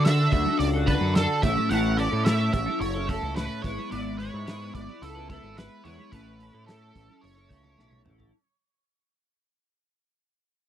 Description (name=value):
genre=psychedelic rock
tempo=109 BPM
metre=4/4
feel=straight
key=unclear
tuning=A4 = 440 Hz
part: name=octave-fuzz lead guitar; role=melody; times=0.0-8.0 s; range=A4 to F#5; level=-30 LUFS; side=right 3 dB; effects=wah, distortion, tape echo
part: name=clean electric guitar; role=riff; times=0.0-8.3 s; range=A2 to B4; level=-29 LUFS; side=left 2 dB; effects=flanger
part: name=growling picked electric bass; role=bass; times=0.0-8.3 s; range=F#1 to D3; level=-28 LUFS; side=equal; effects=overdrive
part: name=cloth-damped thuddy drum kit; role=drums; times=0.1-8.3 s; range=hi-hat, kick drum, snare drum, toms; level=-26 LUFS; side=equal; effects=none
part: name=congas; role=percussion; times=0.3-8.3 s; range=none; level=-37 LUFS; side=right 16 dB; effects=none
room=little or no reverb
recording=dry, close 1970s-style studio recording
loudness=-23 LUFS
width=side -10 dB against mid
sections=0.0-8.3 A section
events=fade-out 0.0-8.3; drum fill 7.8-8.3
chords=0.0 D; 1.4 A; 3.6 E/G#; 6.1 A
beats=0.04 0.60 1.15 | 1.71 2.26 2.81 3.36 | 3.92 4.47 5.02 5.57 | 6.13 6.68 7.23 7.78